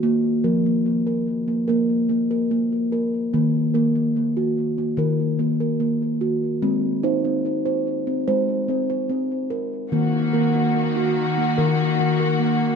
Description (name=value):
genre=world meditative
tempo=73 BPM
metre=4/4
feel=straight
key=Eb kumoi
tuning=A4 = 439 Hz
part: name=steel tongue drum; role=arpeggios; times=0.0-12.8 s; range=Eb3 to C5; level=-19 LUFS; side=equal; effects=ping-pong delay
part: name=warm studio string section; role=sustained chords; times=9.9-12.8 s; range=Eb3 to Gb4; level=-23 LUFS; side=left 2 dB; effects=none
room=moderate scoring stage reverb, RT60 2.0 s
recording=none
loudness=-19 LUFS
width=side -6 dB against mid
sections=0.0-12.8 A section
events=none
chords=0.0 Bb5; 3.3 Ebm; 6.6 Ab; 9.9 Ebm